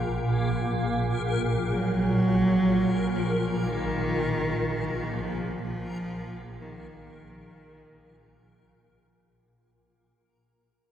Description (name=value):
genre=dark ambient drone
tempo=free time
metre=none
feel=none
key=unclear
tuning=A4 = 443 Hz
part: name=swarming drone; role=drone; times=0.0-9.7 s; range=Bb1 to Bb2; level=-29 LUFS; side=equal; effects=built-in reverb
part: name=backwards swelling texture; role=texture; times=0.0-9.6 s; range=Bb3 to Bb4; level=-34 LUFS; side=equal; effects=built-in reverb
part: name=dark cello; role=melody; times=1.7-9.1 s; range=Eb3 to Gb3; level=-27 LUFS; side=right 1 dB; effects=none
room=wet cathedral reverb, RT60 5.7 s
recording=none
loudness=-24 LUFS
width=side -10 dB against mid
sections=0.0-9.6 A section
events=fade-out 0.0-9.6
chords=none